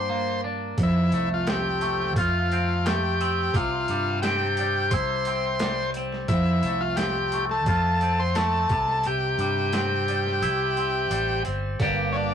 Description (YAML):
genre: psychedelic rock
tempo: 87 BPM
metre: 4/4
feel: straight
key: unclear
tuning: A4 = 440 Hz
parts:
  - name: combo organ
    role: melody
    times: 0.0-12.3 s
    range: C#4 to C5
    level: -25 LUFS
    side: left 2 dB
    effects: none
  - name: twangy electric guitar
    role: riff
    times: 0.0-12.3 s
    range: F2 to G4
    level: -27 LUFS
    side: right 1 dB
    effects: phaser
  - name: fingered electric bass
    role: bass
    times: 0.0-12.3 s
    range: G1 to G2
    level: -28 LUFS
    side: equal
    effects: none
  - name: boom bap sampler-style drum kit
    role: drums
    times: 0.8-12.0 s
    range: hi-hat, kick drum, snare drum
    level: -29 LUFS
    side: right 1 dB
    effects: overdrive
room: wet booth ambience, RT60 0.2 s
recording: rough rehearsal-room recording, warm saturation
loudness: -22 LUFS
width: side -8 dB against mid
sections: 0.0-11.8 A section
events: kick and snare drop out 10.4-11.8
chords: 0.0 Gm; 0.8 F; 3.5 C; 6.3 F; 8.7 C; 11.8 Gm